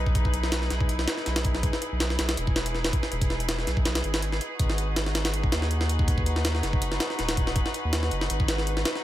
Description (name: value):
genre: drum and bass, jungle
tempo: 162 BPM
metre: 4/4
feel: swing 54% on 16ths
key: G# minor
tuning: A4 = 440 Hz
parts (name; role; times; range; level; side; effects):
- warm studio string section; sustained chords; 0.0-9.0 s; D#4 to B4; -32 LUFS; left 1 dB; none
- saturated sub bass; bass; 0.0-8.8 s; D#1 to D#2; -28 LUFS; equal; none
- jungle sampler-style drum kit; drums; 0.1-9.0 s; hi-hat, kick drum, snare drum; -26 LUFS; equal; none
room: digital ambience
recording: none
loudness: -24 LUFS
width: side -14 dB against mid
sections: 0.0-9.0 A section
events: kick drops out 3.9-4.6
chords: 0.0 Emaj7; 4.6 G#m7